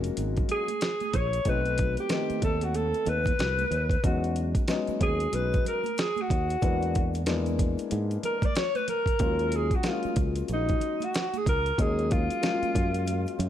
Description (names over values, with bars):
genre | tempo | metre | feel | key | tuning
hip hop, jazz-hop | 93 BPM | 4/4 | swing 61% on 16ths | unclear | A4 = 441 Hz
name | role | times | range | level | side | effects
dark upright piano | accompaniment | 0.0-13.5 s | D#3 to Gb4 | -32 LUFS | left 6 dB | none
fingered electric bass | bass | 0.0-13.5 s | Ab1 to G#2 | -29 LUFS | right 1 dB | none
dusty soul sampler-style drum kit | drums | 0.0-13.5 s | hi-hat, kick drum, snare drum | -29 LUFS | right 1 dB | overdrive
tube shaker and congas | percussion | 0.1-13.5 s | none | -41 LUFS | right 17 dB | none
breathy alto saxophone | melody | 0.5-13.5 s | Eb4 to D5 | -29 LUFS | equal | slapback echo
room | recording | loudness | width
studio ambience | none | -24 LUFS | side -11 dB against mid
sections
0.0-13.5 A section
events
alto saxophone solo 0.0-13.5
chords
0.0 Gbadd9; 1.5 B7b9; 4.0 Emaj13; 6.6 E7#11; 9.2 Ebm11